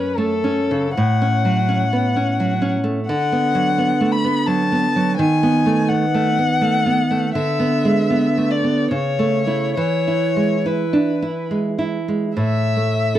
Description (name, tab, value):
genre	romantic duo for violin and classical guitar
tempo	65-88 BPM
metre	3/4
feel	rubato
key	unclear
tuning	A4 = 441 Hz
part	warm violin	melody	0.0-13.2 s	A4 to B5	-21 LUFS	left 5 dB	none
part	nylon-string guitar	accompaniment	0.0-13.2 s	F#2 to A4	-18 LUFS	right 2 dB	none
room	little or no reverb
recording	dry, close 1970s-style studio recording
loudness	-16 LUFS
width	side -12 dB against mid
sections	0.0-12.4 A section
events	none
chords	0.0 F#m; 1.0 F#m/A; 3.1 Bm/D; 5.2 B7/D#; 7.4 E7/D; 8.9 A/C#; 9.8 E; 12.4 A5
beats	0.16 | 0.96 1.68 2.39 | 3.08 3.79 4.48 | 5.20 5.90 6.62 | 7.35 8.11 8.90 | 9.77 10.66 11.51 | 12.37 13.15